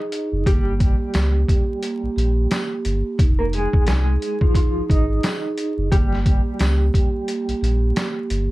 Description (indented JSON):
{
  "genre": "hip hop, boom-bap hip-hop",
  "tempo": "88 BPM",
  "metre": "4/4",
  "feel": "swing 59% on 16ths",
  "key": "unclear",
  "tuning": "A4 = 439 Hz",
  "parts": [
    { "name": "mellow electric guitar", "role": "melody", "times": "0.0-7.9 s", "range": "F3 to Eb5", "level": "-28 LUFS", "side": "equal", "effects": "tremolo, high-pass filter, low-pass filter, analog delay" },
    { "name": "vibraphone with soft mallets", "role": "accompaniment", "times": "0.0-8.5 s", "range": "Bb3 to Ab4", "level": "-26 LUFS", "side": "right 3 dB", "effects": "cassette tape, high-pass filter, low-pass filter" },
    { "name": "trip hop sampler-style drum kit", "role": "drums", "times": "0.1-8.5 s", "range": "hi-hat, kick drum, snare drum", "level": "-19 LUFS", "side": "equal", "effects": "none" },
    { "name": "sub bass with octave", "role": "bass", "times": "0.3-8.5 s", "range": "F1 to Db2", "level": "-20 LUFS", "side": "equal", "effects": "none" },
    { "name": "tambourine", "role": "percussion", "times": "1.1-8.1 s", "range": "none", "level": "-41 LUFS", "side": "left 3 dB", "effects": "none" }
  ],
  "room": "little or no reverb",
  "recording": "dark, warm production, vinyl crackle",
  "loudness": "-18 LUFS",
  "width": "side -18 dB against mid",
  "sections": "0.0-8.5 A section",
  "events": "break 7.3-8.5",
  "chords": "0.5 Gdim; 3.2 Fm7; 5.9 Gdim"
}